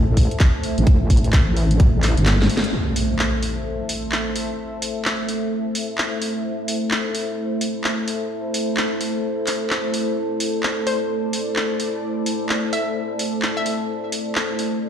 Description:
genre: bass house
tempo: 129 BPM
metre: 4/4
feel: swing 62% on 16ths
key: A minor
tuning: A4 = 441 Hz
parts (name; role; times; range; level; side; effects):
- sweeping resonant pad; sustained chords; 0.0-14.9 s; A3 to E5; -25 LUFS; equal; chorus, sidechain pumping
- wobble bass; bass; 0.0-2.5 s; G1 to A1; -18 LUFS; equal; chorus, overdrive, sidechain pumping
- warbly tape-like pad; texture; 0.0-14.9 s; E4 to A5; -29 LUFS; equal; chorus, built-in reverb, sidechain pumping
- electronic kick drum; drums; 0.2-1.9 s; none; -15 LUFS; equal; none
- garage drum kit; drums; 0.2-14.7 s; handclaps, hi-hat, snare drum; -25 LUFS; equal; none
- impact; sound effects; 2.7-4.6 s; none; -27 LUFS; equal; none
- hollow square pluck; melody; 10.9-13.9 s; C5 to E5; -28 LUFS; left 2 dB; chorus, dub echo
room: moderate lush hall reverb, RT60 1.7 s, digital ambience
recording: played on a big sound system in a bare room, large studio reverb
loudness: -19 LUFS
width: side -9 dB against mid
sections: 0.0-2.7 A section; 2.7-14.9 B section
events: kick drops out 2.3-2.7; drum fill 2.3-2.7; band accent 2.6; impact 2.7-4.6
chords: 0.0 Am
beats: 0.40 | 0.87 1.33 1.80 2.26 | 2.73 3.19 3.66 4.12 | 4.59 5.05 5.52 5.98 | 6.45 6.91 7.38 7.84 | 8.31 8.77 9.24 9.70 | 10.17 10.63 11.10 11.56 | 12.03 12.49 12.96 13.43 | 13.89 14.36 14.82

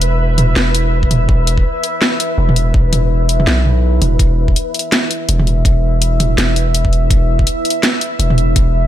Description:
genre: half-time drum and bass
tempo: 165 BPM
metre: 4/4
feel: swing 58% on 16ths, half-time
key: unclear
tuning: A4 = 440 Hz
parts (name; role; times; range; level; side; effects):
- deep dark ambient pad; sustained chords; 0.0-8.9 s; E4 to E5; -20 LUFS; left 1 dB; chorus, built-in reverb, sidechain pumping
- long sustained 808-style bass; bass; 0.0-8.9 s; E1 to B1; -14 LUFS; equal; none
- drum and bass drum kit; drums; 0.0-8.6 s; hi-hat, snare drum, toms; -16 LUFS; equal; none
- flickering grainy texture; texture; 0.0-4.2 s; B4; -28 LUFS; right 2 dB; built-in reverb
- electronic kick drum; drums; 1.0-8.6 s; none; -15 LUFS; equal; none
room: little or no reverb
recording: none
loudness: -12 LUFS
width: side -12 dB against mid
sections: 0.0-4.2 A section; 4.2-8.9 A section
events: drop 0.0-4.2, 4.2-8.9; kick drops out 3.5-4.2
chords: 0.0 E5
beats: 0.20 0.56 0.93 | 1.29 1.65 2.02 2.38 | 2.74 3.11 3.47 3.83 | 4.20 4.56 4.92 5.29 | 5.65 6.02 6.38 6.74 | 7.11 7.47 7.83 8.20 | 8.56

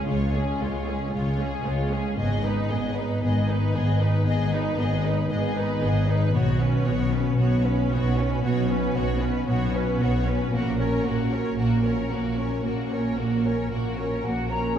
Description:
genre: cinematic, heroic adventure film score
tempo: 115 BPM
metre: 4/4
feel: straight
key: unclear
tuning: A4 = 439 Hz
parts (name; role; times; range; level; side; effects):
- rich symphonic violin section; melody; 0.0-14.8 s; Ab4 to Eb5; -35 LUFS; left 3 dB; none
- rich symphonic violin section; second line; 0.0-14.8 s; Cb4 to Cb5; -32 LUFS; left 1 dB; none
- rich symphonic viola section; accompaniment; 0.0-14.8 s; Ab3 to Eb4; -30 LUFS; right 1 dB; none
- concert harp; arpeggios; 0.0-14.8 s; Ab2 to Ab4; -30 LUFS; left 3 dB; none
- rich symphonic cello section; bass; 0.1-14.7 s; Db2 to Cb3; -26 LUFS; right 1 dB; none
- rich symphonic double bass section; bass; 0.1-14.7 s; Ab1 to Db2; -29 LUFS; right 1 dB; none
- bright small flute group; second line; 14.2-14.8 s; Gb5 to Bb5; -30 LUFS; left 4 dB; none
room: wet recital hall reverb, RT60 1.6 s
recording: heard from further back in the room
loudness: -22 LUFS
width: side -9 dB against mid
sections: 0.0-14.8 A section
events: build-up 0.0-14.8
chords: 0.0 Db; 2.2 Abm; 6.3 Cbsus2; 10.5 Gb/Bb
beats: | 0.08 0.61 1.13 1.65 | 2.18 2.70 3.22 3.74 | 4.26 4.78 5.29 5.82 | 6.34 6.86 7.38 7.90 | 8.42 8.94 9.47 9.99 | 10.52 11.04 11.56 12.09 | 12.63 13.16 13.70 14.23 | 14.77

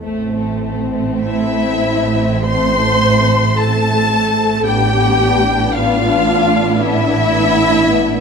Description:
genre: classical, slow romantic movement for string orchestra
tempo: 46-57 BPM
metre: 4/4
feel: rubato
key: A minor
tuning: A4 = 438 Hz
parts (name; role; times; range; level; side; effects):
- warm symphonic violin section; second line; 0.0-8.2 s; A3 to D4; -20 LUFS; left 4 dB; none
- warm studio viola section; accompaniment; 0.0-8.2 s; E4 to C5; -19 LUFS; equal; none
- rich symphonic cello section; bass; 0.0-8.2 s; A2; -20 LUFS; right 6 dB; none
- warm symphonic double bass section; bass; 0.0-8.2 s; A1; -20 LUFS; right 3 dB; none
- warm symphonic violin section; melody; 1.2-8.2 s; E5 to C6; -16 LUFS; left 4 dB; none
room: moderate scoring stage reverb, RT60 1.9 s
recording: none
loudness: -12 LUFS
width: side -6 dB against mid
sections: 0.0-8.2 A section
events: none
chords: 0.0 Am; 4.7 Bdim/A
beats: | 0.03 1.20 2.45 3.57 | 4.65 5.73 6.80 7.85

